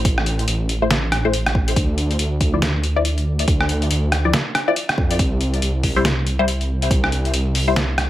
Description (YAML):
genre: deep dubstep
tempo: 140 BPM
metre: 4/4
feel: swing 60% on 16ths, half-time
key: unclear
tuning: A4 = 442 Hz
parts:
  - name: dark detuned saw bass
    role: bass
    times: 0.0-8.1 s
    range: A1 to F2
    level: -20 LUFS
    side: equal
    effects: none
  - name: electronic kick drum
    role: drums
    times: 0.0-7.0 s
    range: none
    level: -20 LUFS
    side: equal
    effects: none
  - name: trip hop sampler-style drum kit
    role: drums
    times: 0.1-8.1 s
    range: hi-hat, rim click, snare drum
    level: -22 LUFS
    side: equal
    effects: none
  - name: filtered dub chord stab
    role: stabs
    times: 0.8-7.8 s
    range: F3 to D5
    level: -22 LUFS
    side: left 4 dB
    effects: phaser, dub echo
room: light reverb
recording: none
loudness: -17 LUFS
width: side -14 dB against mid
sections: 0.0-8.1 A section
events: none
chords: 0.0 Am; 1.8 Dmadd9; 5.2 C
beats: | 0.05 0.48 0.91 1.33 | 1.76 2.19 2.62 3.05 | 3.48 3.91 4.33 4.76 | 5.19 5.62 6.05 6.48 | 6.91 7.33 7.76